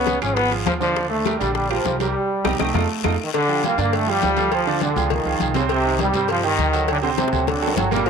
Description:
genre	latin, salsa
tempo	203 BPM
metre	4/4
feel	straight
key	unclear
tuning	A4 = 439 Hz
part	bright trombone section	melody	0.0-8.1 s	C3 to Db4	-21 LUFS	left 1 dB	none
part	bright grand piano	accompaniment	0.0-8.1 s	Bb2 to D5	-24 LUFS	right 10 dB	none
part	upright bass	bass	0.0-8.1 s	G1 to G2	-26 LUFS	left 1 dB	none
part	bongos and cowbell	percussion	0.1-8.1 s	none	-29 LUFS	left 14 dB	none
part	congas	percussion	0.1-8.1 s	none	-30 LUFS	left 13 dB	none
part	guiro	percussion	0.1-8.1 s	none	-34 LUFS	left 16 dB	none
part	timbales and agogo bells	percussion	0.1-7.9 s	none	-30 LUFS	right 12 dB	none
part	claves	percussion	0.2-3.1 s	none	-34 LUFS	left 14 dB	none
room	moderate spring reverb, RT60 2.3 s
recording	1960s-style stereo with parts hard left and right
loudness	-18 LUFS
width	side -6 dB against mid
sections	0.0-3.3 A section; 3.3-8.1 B section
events	band accent 2.2-3.3; drum fill 2.6-3.3, 7.2-8.1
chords	0.0 Db9; 1.0 Ebmaj9; 2.2 Cm; 2.7 F7; 3.3 G5; 4.5 Dm; 5.1 Dbadd9; 5.7 Cm; 6.9 D7

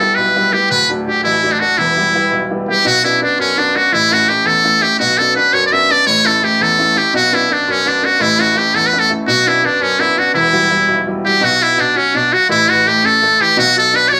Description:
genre	celtic folk, Celtic jig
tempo	112 BPM (dotted quarters)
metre	6/8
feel	straight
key	unclear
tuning	A4 = 440 Hz
part	trumpet with metal mute	melody	0.0-14.2 s	C#4 to E5	-14 LUFS	equal	none
part	clear upright piano	accompaniment	0.0-14.2 s	D1 to E4	-21 LUFS	equal	none
room	wet studio ambience, RT60 0.5 s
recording	vinyl crackle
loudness	-13 LUFS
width	mono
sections	0.0-2.9 A section; 2.9-11.4 B section; 11.4-14.2 B section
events	none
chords	0.0 Em; 0.7 D; 1.8 Em; 2.9 Bmadd9; 3.9 A; 5.0 Bmadd9; 6.1 A; 7.1 Bmadd9; 8.2 A; 9.3 Bmadd9; 10.3 Emadd9; 11.4 B5; 12.5 A; 13.6 Bm

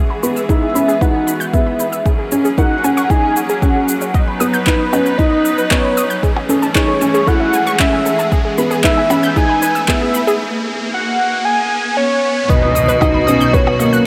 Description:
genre	piano and strings electronica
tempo	115 BPM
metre	4/4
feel	straight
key	B major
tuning	A4 = 440 Hz
part	bright symphonic string section	sustained chords	0.0-14.1 s	B2 to B4	-25 LUFS	equal	sidechain pumping, shimmer reverb
part	riser and impact	sound effects	2.1-14.1 s	none	-28 LUFS	equal	none
part	unison pluck	arpeggios	0.1-14.0 s	G#4 to G6	-25 LUFS	equal	sidechain pumping, tape echo, shimmer reverb
part	felt-muted upright piano	riff	0.2-14.1 s	A#3 to E4	-20 LUFS	equal	shimmer reverb
part	electronic shaker, handclaps and percussion blips	drums	0.2-14.0 s	none	-25 LUFS	equal	none
part	warm velvety synth lead	melody	0.5-14.1 s	B4 to G#5	-20 LUFS	equal	chorus, tremolo, shimmer reverb
part	electronic kick drum	drums	0.5-13.6 s	none	-18 LUFS	equal	none
part	rich chamber cello section	bass	12.5-14.0 s	B2	-21 LUFS	equal	sidechain pumping
room	moderate huge ambient reverb, RT60 5.6 s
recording	none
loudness	-15 LUFS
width	mono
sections	0.0-12.5 A section; 12.5-14.1 B section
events	build-up 0.0-12.5; riser 2.1-12.5; break 10.4-12.5; drop 12.5-14.1; impact 12.5-14.1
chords	0.0 E; 2.1 F#add9; 4.1 B; 6.2 Amaj7; 8.3 E; 10.4 N.C.; 12.5 B

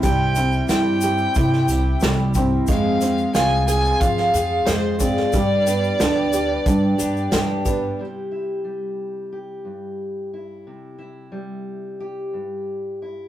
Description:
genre	indie folk with a building arrangement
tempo	90 BPM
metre	4/4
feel	straight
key	C major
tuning	A4 = 440 Hz
part	dark fiddle	melody	0.0-7.3 s	C5 to Ab5	-23 LUFS	right 1 dB	none
part	picked twelve-string acoustic guitar	accompaniment	0.0-8.0 s	F2 to Ab4	-26 LUFS	left 4 dB	none
part	dark upright piano	arpeggios	0.0-8.0 s	G3 to Ab4	-22 LUFS	right 2 dB	none
part	upright bass	bass	0.0-7.9 s	C2 to G3	-23 LUFS	equal	none
part	unplugged drum kit	drums	0.0-7.8 s	hi-hat, kick drum, snare drum	-24 LUFS	equal	none
part	tube shaker	percussion	0.0-7.8 s	none	-34 LUFS	left 6 dB	none
part	fingerpicked steel-string acoustic guitar	accompaniment	8.0-13.3 s	G2 to G4	-29 LUFS	left 1 dB	none
room	moderate studio reverb, RT60 0.6 s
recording	rough rehearsal-room recording, warm saturation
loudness	-18 LUFS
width	side -12 dB against mid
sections	0.0-8.0 A section; 8.0-13.3 B section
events	none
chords	0.0 C; 2.7 Fm; 5.3 G; 8.0 C

